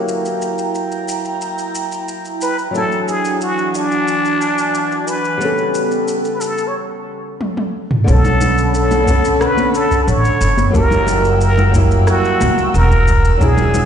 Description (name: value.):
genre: sunset chillout.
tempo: 90 BPM.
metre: 4/4.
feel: straight.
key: unclear.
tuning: A4 = 440 Hz.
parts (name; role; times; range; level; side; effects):
flamenco guitar; accompaniment; 0.0-13.9 s; D3 to G#5; -21 LUFS; equal; auto-pan, vintage 12-bit sampler grit, tape echo.
airy breathy pad; sustained chords; 0.0-13.9 s; C#3 to E6; -23 LUFS; right 1 dB; chorus, phaser.
deep house drum kit; drums; 0.1-13.9 s; rim click, shaker, toms; -25 LUFS; equal; studio reverb.
trumpet with plunger mute; melody; 2.4-13.9 s; D4 to C#5; -18 LUFS; equal; tape echo.
upright bass; bass; 8.1-13.9 s; E1 to C#2; -15 LUFS; equal; none.
electronic kick drum; drums; 8.1-13.5 s; none; -16 LUFS; equal; studio reverb.
congas; percussion; 8.2-13.9 s; none; -24 LUFS; left 3 dB; none.
room: light reverb, small room ambience.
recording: played on a big sound system in a bare room, large studio reverb, nothing above 10.3 kHz.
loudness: -13 LUFS.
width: side -8 dB against mid.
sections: 0.0-8.1 A section; 8.1-13.9 B section.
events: break 6.7-8.1; drum fill 7.4-8.1.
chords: 0.0 F#7b9; 2.7 E9; 5.4 A9; 8.1 Bm9; 10.4 F#7b9.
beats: | 0.08 0.74 1.41 2.08 | 2.74 3.41 4.08 4.74 | 5.41 6.08 6.74 7.41 | 8.08 8.74 9.41 10.08 | 10.74 11.41 12.08 12.74 | 13.41.